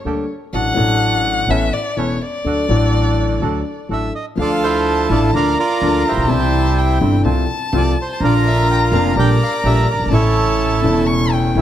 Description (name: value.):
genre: tango.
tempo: 125 BPM.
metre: 4/4.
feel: rubato.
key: D major, D minor from 4.4 s.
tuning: A4 = 438 Hz.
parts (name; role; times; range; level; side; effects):
warm violin; second line; 0.0-11.6 s; C#5 to C#6; -22 LUFS; left 4 dB; none.
upright bass; bass; 0.0-11.6 s; E1 to D2; -19 LUFS; right 2 dB; none.
dark baby grand piano; accompaniment; 0.1-11.6 s; E1 to A4; -18 LUFS; left 3 dB; none.
bandoneon; stabs; 0.1-11.6 s; F3 to B4; -28 LUFS; right 6 dB; none.
bandoneon; melody; 3.9-11.6 s; E4 to G5; -19 LUFS; right 4 dB; none.
room: moderate plate reverb, RT60 2.3 s.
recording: none.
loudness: -14 LUFS.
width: side -11 dB against mid.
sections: 0.0-4.4 A section; 4.4-11.6 B section.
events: violin solo 0.0-4.4.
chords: 0.0 Gmadd9; 0.5 D/A; 1.5 Aadd9; 2.4 D; 4.4 Dmadd9; 5.3 Bb/D; 6.3 C; 7.2 F/C; 8.2 Bb; 9.2 Gm/Bb; 10.1 A.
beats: 0.05 | 0.53 1.01 1.49 1.97 | 2.44 2.92 3.40 3.89 | 4.37 4.85 5.33 5.81 | 6.29 6.77 7.25 7.73 | 8.20 8.68 9.16 9.64 | 10.12 10.59 11.07 11.55.